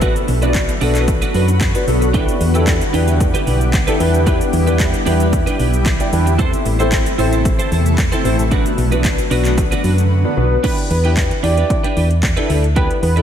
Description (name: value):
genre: dance-pop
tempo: 113 BPM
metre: 4/4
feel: straight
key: E minor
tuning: A4 = 439 Hz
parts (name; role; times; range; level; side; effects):
- dark baby grand piano; accompaniment; 0.0-13.2 s; B3 to D5; -21 LUFS; left 2 dB; ensemble chorus, sidechain pumping
- shimmering ambient pad; sustained chords; 0.0-10.6 s; C3 to B4; -22 LUFS; left 1 dB; chorus, built-in reverb, sidechain pumping
- twelve-string electric guitar; riff; 0.0-13.2 s; D4 to C5; -25 LUFS; right 6 dB; ensemble chorus
- solid FM bass; bass; 0.0-13.2 s; A1 to F#2; -16 LUFS; equal; sidechain pumping
- house drum kit; drums; 0.0-13.2 s; crash cymbal, handclaps, hi-hat, kick drum, shaker; -19 LUFS; equal; overdrive
- fat analog lead; melody; 10.6-13.2 s; B4 to D5; -22 LUFS; right 3 dB; chorus, ping-pong delay
room: light reverb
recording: none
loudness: -13 LUFS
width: side -9 dB against mid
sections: 0.0-10.6 A section; 10.6-13.2 B section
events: silent gap 10.1-10.6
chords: 0.0 Bm; 2.1 Em7; 6.4 Am; 8.5 Bm; 10.6 Em7